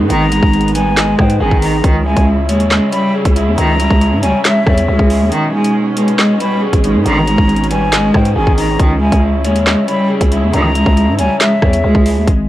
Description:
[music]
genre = hip hop, drill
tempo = 138 BPM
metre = 4/4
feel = half-time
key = unclear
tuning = A4 = 440 Hz
[part]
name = warm cello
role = melody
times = 0.0-12.2 s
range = D#3 to G#3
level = -15 LUFS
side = equal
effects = none
[part]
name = electric guitar at the edge of break-up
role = accompaniment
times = 0.0-12.5 s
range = G#3 to E5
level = -19 LUFS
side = left 1 dB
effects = warbly pitch drift
[part]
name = warm symphonic string section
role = sustained chords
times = 0.0-12.2 s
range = G#2 to E4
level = -24 LUFS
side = right 1 dB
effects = none
[part]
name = growling 808-style bass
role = bass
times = 0.0-12.5 s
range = G#1 to G#2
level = -16 LUFS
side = equal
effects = none
[part]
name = breathy concert flute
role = second line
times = 0.1-12.2 s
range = E5 to B5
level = -20 LUFS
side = left 1 dB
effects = analog delay
[part]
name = drill drum kit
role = drums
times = 0.1-12.4 s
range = handclaps, hi-hat, kick drum, rim click, snare drum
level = -14 LUFS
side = equal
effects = none
[sound]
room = small room ambience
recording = dry, gritty hardware recording, cassette tape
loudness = -10 LUFS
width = side -14 dB against mid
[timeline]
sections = 0.0-12.3 A section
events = break 5.3-6.2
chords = 0.0 G#m; 1.8 C#madd9; 5.3 G#m; 8.8 C#madd9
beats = | 0.10 0.54 0.97 1.40 | 1.84 2.27 2.71 3.14 | 3.58 4.01 4.45 4.88 | 5.32 5.75 6.19 6.62 | 7.06 7.49 7.93 8.36 | 8.80 9.23 9.66 10.10 | 10.54 10.97 11.40 11.84 | 12.27

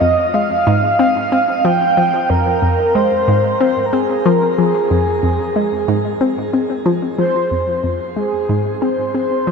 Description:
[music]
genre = ambient, sequencer-driven space music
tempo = 92 BPM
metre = 4/4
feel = straight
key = F minor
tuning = A4 = 440 Hz
[part]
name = breathy flute-like synth lead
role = melody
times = 0.0-9.5 s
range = Ab4 to G5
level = -16 LUFS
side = right 1 dB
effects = analog chorus, shimmer reverb, analog delay
[part]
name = hollow square pluck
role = riff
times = 0.0-9.5 s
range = F2 to C4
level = -17 LUFS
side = left 1 dB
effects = chorus, phaser, shimmer reverb, analog delay
[sound]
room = wet huge ambient reverb, RT60 7.5 s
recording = none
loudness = -14 LUFS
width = side -5 dB against mid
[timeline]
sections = 0.0-7.5 A section; 7.5-9.5 B section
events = none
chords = 0.0 Fm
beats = 0.34 0.99 1.64 | 2.29 2.95 3.60 4.25 | 4.90 5.56 6.21 6.86 | 7.51 8.16 8.82 9.47

